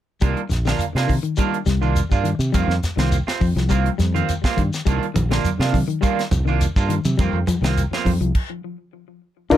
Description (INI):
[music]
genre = afrobeat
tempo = 103 BPM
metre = 4/4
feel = straight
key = C minor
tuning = A4 = 440 Hz
[part]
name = electric guitar at the edge of break-up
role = arpeggios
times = 0.2-9.6 s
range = D3 to G3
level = -25 LUFS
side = left 6 dB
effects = tape echo
[part]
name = electric guitar at the edge of break-up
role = stabs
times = 0.2-9.6 s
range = Eb3 to F4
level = -25 LUFS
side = right 10 dB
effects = wide subtle chorus
[part]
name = fingered electric bass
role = bass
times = 0.2-9.6 s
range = Bb1 to C3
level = -21 LUFS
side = equal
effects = none
[part]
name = tight funk drum kit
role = drums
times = 0.2-9.6 s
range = crash cymbal, hi-hat, kick drum, snare drum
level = -23 LUFS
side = equal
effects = none
[part]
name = shekere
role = percussion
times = 0.2-9.6 s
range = none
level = -27 LUFS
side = equal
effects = none
[part]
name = congas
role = percussion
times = 5.2-9.6 s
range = none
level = -27 LUFS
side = right 4 dB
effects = none
[part]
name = barky reed electric piano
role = accompaniment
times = 9.5-9.6 s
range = D4 to Bb4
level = -12 LUFS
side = left 5 dB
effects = overdrive, fast tremolo
[sound]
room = light reverb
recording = none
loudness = -18 LUFS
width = side -12 dB against mid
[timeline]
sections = 0.2-9.5 A section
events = stop 8.3-9.5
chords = 0.2 Cm11; 2.5 F7sus4; 4.9 Cm11; 7.2 F7sus4